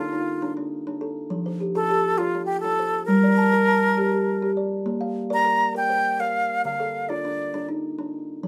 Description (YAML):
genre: southern african traditional, mbira-style interlocking cycle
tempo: 135 BPM (dotted quarters)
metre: 12/8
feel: straight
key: Bb major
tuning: A4 = 440 Hz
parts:
  - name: breathy bright concert flute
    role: melody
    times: 0.0-7.7 s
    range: F4 to Bb5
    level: -24 LUFS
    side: equal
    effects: none
  - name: kalimba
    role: arpeggios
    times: 0.0-8.5 s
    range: D3 to A5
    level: -27 LUFS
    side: equal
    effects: none
room: moderate small room reverb, RT60 0.5 s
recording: dark, warm production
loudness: -23 LUFS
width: mono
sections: 0.0-4.9 A section; 4.9-8.5 A section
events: none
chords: 0.0 Dm; 1.3 F; 3.1 Gm; 4.9 Bb; 6.6 Dm